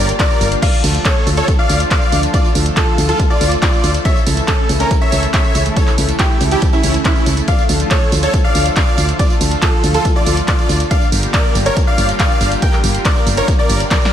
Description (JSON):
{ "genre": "uplifting trance", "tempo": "140 BPM", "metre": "4/4", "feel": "straight", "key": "D harmonic minor", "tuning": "A4 = 438 Hz", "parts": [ { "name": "dense compressed supersaw", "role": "melody", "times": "0.0-14.1 s", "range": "C#4 to G5", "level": "-20 LUFS", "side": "equal", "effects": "sidechain pumping, ping-pong delay" }, { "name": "bright baby grand piano", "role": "second line", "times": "0.0-14.1 s", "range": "E4 to G5", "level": "-22 LUFS", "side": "left 1 dB", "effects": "sidechain pumping, ping-pong delay" }, { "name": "lush unison pad", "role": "sustained chords", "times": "0.0-14.1 s", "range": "C#3 to A4", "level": "-22 LUFS", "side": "equal", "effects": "chorus, sidechain pumping" }, { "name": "solid FM bass", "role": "bass", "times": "0.0-13.8 s", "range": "G1 to D2", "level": "-17 LUFS", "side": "equal", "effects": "sidechain pumping" }, { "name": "punchy analog drum machine", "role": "drums", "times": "0.1-14.1 s", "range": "crash cymbal, handclaps, hi-hat, ride cymbal, snare drum, tambourine", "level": "-21 LUFS", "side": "right 1 dB", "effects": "sidechain pumping on hats, sidechain pumping on cymbals, sidechain pumping on perc" }, { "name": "electronic kick drum", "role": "drums", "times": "0.2-14.0 s", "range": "none", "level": "-15 LUFS", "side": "equal", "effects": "none" } ], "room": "moderate plate reverb, RT60 1.6 s", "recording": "dreamy mix soaked in reverb", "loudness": "-12 LUFS", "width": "side -10 dB against mid", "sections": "0.0-14.1 A section", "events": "drum fill 13.9", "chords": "0.0 Gm7; 0.6 Dm; 4.1 A/C#; 7.5 Dm; 10.9 Gm7" }